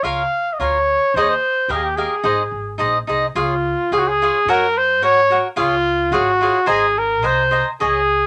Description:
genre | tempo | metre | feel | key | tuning
mexican folk, mariachi | 108 BPM | 2/4 | rubato | Ab major, Db major from 3.4 s | A4 = 438 Hz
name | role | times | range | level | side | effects
warm trumpet | melody | 0.0-8.3 s | F4 to F5 | -19 LUFS | equal | none
cavaquinho | accompaniment | 0.0-8.0 s | Eb4 to Bb5 | -22 LUFS | equal | none
upright bass | bass | 0.0-8.3 s | Ab1 to Ab2 | -31 LUFS | equal | none
room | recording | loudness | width
light reverb | none | -18 LUFS | mono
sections
0.0-3.4 A section; 3.4-8.3 B section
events
none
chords
0.0 Bbm/Db; 1.1 Ab/Eb; 1.7 Ebadd9; 2.2 Ab; 3.4 Db; 4.5 Gb; 5.6 Db; 6.7 Abadd9

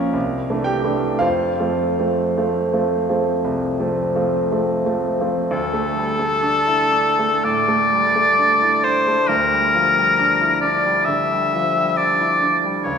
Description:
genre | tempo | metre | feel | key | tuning
classical, romantic duo for oboe and grand piano | 52-68 BPM | 4/4 | rubato | F major, D minor from 5.5 s | A4 = 440 Hz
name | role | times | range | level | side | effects
bright grand piano | accompaniment | 0.0-13.0 s | Bb1 to Bb5 | -20 LUFS | right 1 dB | none
clear oboe | melody | 5.5-13.0 s | A4 to E5 | -16 LUFS | left 2 dB | none
room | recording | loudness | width
wet concert hall reverb, RT60 2.1 s | heard from further back in the room | -16 LUFS | side -7 dB against mid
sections
0.0-5.5 A section; 5.5-13.0 B section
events
none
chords
0.1 C13; 1.2 F; 5.5 D5; 9.3 Gm/D

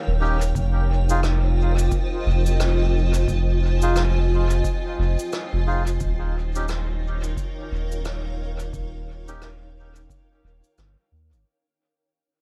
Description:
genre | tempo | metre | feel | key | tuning
ambient dub | 88 BPM | 4/4 | swing 60% on 16ths | unclear | A4 = 441 Hz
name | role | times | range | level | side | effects
granular cloud pad | sustained chords | 0.0-11.5 s | Eb4 to Ab5 | -31 LUFS | equal | built-in reverb
soft dub sub bass | bass | 0.1-11.4 s | Eb1 to Eb2 | -24 LUFS | equal | none
melodica | stabs | 0.2-9.5 s | Db4 to Ab4 | -32 LUFS | equal | dub echo
cabasa and rim click | drums | 0.4-11.4 s | none | -37 LUFS | equal | dub echo
electronic kick drum | drums | 0.6-10.3 s | none | -31 LUFS | equal | none
room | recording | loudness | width
small room ambience | echo-heavy mix | -23 LUFS | mono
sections
0.0-11.5 A section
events
fade-out 4.2-11.5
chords
0.0 Eb7; 0.6 Fm7; 6.0 Eb7

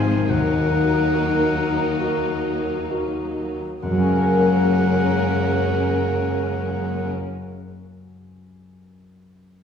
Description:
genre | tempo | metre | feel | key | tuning
cinematic | 64-75 BPM | 4/4 | rubato | Gb major | A4 = 439 Hz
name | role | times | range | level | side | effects
rich studio violin section | melody | 0.0-7.1 s | C4 to Eb4 | -28 LUFS | left 3 dB | none
bright oboe | second line | 0.0-7.1 s | Gb5 to Ab5 | -29 LUFS | right 1 dB | none
mellow large flute ensemble | second line | 0.0-7.1 s | Bb4 to C5 | -31 LUFS | right 1 dB | none
rich studio violin section | second line | 0.0-7.1 s | Bb4 to C5 | -32 LUFS | left 3 dB | none
clear concert grand piano | accompaniment | 0.0-9.6 s | Eb2 to Ab5 | -25 LUFS | left 1 dB | none
rich studio viola section | accompaniment | 0.0-7.1 s | F3 to Bb3 | -30 LUFS | right 2 dB | none
mellow French horn section | sustained chords | 0.0-7.1 s | C3 to Ab4 | -26 LUFS | left 2 dB | none
concert harp | arpeggios | 0.0-7.7 s | Gb2 to C6 | -28 LUFS | left 4 dB | none
rich studio cello section | bass | 0.0-7.1 s | Eb2 to Ab2 | -30 LUFS | right 1 dB | none
rich studio double bass section | bass | 0.0-7.1 s | Gb1 to Eb2 | -29 LUFS | equal | none
room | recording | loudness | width
wet scoring stage reverb, RT60 1.8 s | heard from further back in the room, small room ambience | -18 LUFS | side -7 dB against mid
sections
0.0-3.8 A section; 3.8-7.5 B section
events
slowing down 0.0-3.8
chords
0.3 Ebm; 3.8 Gbadd9

